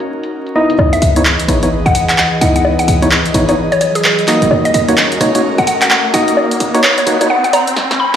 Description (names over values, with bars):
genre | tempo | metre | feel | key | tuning
UK garage, two-step garage | 129 BPM | 4/4 | swing 62% on 16ths | C# dorian | A4 = 440 Hz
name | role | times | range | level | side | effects
airy breathy pad | sustained chords | 0.0-7.7 s | E3 to D#5 | -20 LUFS | left 1 dB | chorus
punchy analog drum machine | drums | 0.0-8.2 s | bongos, handclaps, hi-hat, rim click, snare drum | -15 LUFS | equal | low-pass filter on hats, low-pass filter on perc, low-pass filter on snare
percussive organ stab | stabs | 0.6-7.3 s | A#3 to D#5 | -15 LUFS | equal | chorus, dub echo
short 808-style bass | bass | 0.8-7.8 s | D#1 to D#2 | -16 LUFS | equal | none
riser | sound effects | 2.0-8.2 s | none | -22 LUFS | equal | none
mallet-like synth pluck | melody | 0.9-8.2 s | G#4 to B5 | -16 LUFS | left 1 dB | chorus, dub echo
room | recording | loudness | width
moderate digital room reverb, RT60 1.0 s, digital ambience | played on a big sound system in a bare room, large studio reverb, vinyl crackle, high-pass filter | -10 LUFS | side -9 dB against mid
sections
0.8-8.2 A section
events
build-up 0.8-8.2; filter sweep on synth stab 0.8-8.2; riser 2.0-8.2; drum fill 7.8-8.2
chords
0.0 D#m7; 0.6 C#m9; 4.5 D#m7